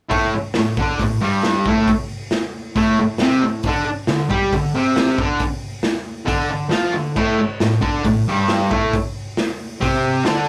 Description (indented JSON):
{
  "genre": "garage rock duo or trio",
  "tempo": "136 BPM",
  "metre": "4/4",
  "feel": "straight",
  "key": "A minor",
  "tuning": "A4 = 440 Hz",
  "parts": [
    { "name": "fuzz guitar", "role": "riff", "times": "0.1-10.5 s", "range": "G2 to G4", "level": "-20 LUFS", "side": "equal", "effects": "distortion" },
    { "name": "raw garage drum kit", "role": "drums", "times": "0.1-10.4 s", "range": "crash cymbal, hi-hat, kick drum, snare drum", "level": "-25 LUFS", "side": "equal", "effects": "none" }
  ],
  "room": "moderate studio ambience, RT60 0.5 s",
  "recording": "rough rehearsal-room recording",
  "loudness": "-19 LUFS",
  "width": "mono",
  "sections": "0.1-10.5 A section",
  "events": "none",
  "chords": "0.1 N.C.; 3.7 Csus24; 7.2 Am"
}